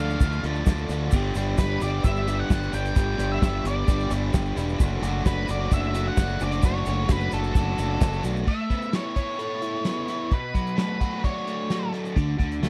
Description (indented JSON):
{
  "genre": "indie rock",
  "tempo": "131 BPM",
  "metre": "4/4",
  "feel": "straight",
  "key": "unclear",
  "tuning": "A4 = 440 Hz",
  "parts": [
    { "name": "octave-fuzz lead guitar", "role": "melody", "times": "0.0-11.9 s", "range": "A4 to G5", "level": "-34 LUFS", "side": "equal", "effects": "distortion, slapback echo" },
    { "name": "biting overdriven guitar", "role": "riff", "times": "0.0-12.7 s", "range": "B2 to C#5", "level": "-31 LUFS", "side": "equal", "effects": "none" },
    { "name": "growling fingered electric bass", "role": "bass", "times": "0.0-8.4, 12.2-12.7 s", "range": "E1 to D2", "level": "-30 LUFS", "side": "equal", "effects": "overdrive" },
    { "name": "unplugged drum kit", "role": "drums", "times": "0.1-12.7 s", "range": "crash cymbal, hi-hat, kick drum, snare drum", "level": "-25 LUFS", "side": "equal", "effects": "none" },
    { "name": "tube shaker", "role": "percussion", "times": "0.1-8.4 s", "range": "none", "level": "-50 LUFS", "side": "equal", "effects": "none" }
  ],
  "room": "little or no reverb",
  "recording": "dry, close 1970s-style studio recording",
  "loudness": "-25 LUFS",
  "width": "mono",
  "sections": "0.0-8.5 A section; 8.5-12.7 B section",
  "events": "none",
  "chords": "0.0 Dm; 1.1 G; 4.8 D/F#; 8.5 Aadd9; 10.3 Bm7; 12.2 D",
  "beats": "0.21 0.67 | 1.12 1.58 2.04 2.50 | 2.96 3.42 3.88 4.34 | 4.80 5.26 5.72 6.18 | 6.64 7.10 7.56 8.02 | 8.48 8.94 9.40 9.86 | 10.32 10.78 11.24 11.71 | 12.17 12.63"
}